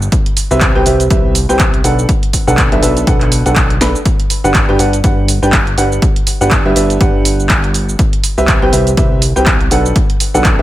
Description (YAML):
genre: piano house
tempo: 122 BPM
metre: 4/4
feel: swing 57% on 16ths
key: G major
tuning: A4 = 440 Hz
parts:
  - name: warm upright piano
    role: riff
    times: 0.0-10.6 s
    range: C4 to B5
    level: -15 LUFS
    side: right 1 dB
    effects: sidechain pumping
  - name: fat analog bass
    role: bass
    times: 0.0-10.6 s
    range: G1 to C2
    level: -16 LUFS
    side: equal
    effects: sidechain pumping
  - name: punchy analog drum machine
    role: drums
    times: 0.0-10.6 s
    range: handclaps, hi-hat, shaker, snare drum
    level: -17 LUFS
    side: right 1 dB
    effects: none
  - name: electronic kick drum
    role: drums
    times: 0.1-10.6 s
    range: none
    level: -14 LUFS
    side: equal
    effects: none
room: digital ambience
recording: none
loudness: -9 LUFS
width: side -14 dB against mid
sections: 0.0-10.6 A section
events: drum fill 3.8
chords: 0.1 Cmaj7; 1.8 Bm7; 4.1 Gmaj7; 8.0 Cmaj7; 9.7 Bm7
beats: | 0.12 0.61 1.10 1.60 | 2.09 2.58 3.07 3.56 | 4.05 4.55 5.04 5.53 | 6.02 6.51 7.01 7.50 | 7.99 8.48 8.97 9.46 | 9.96 10.45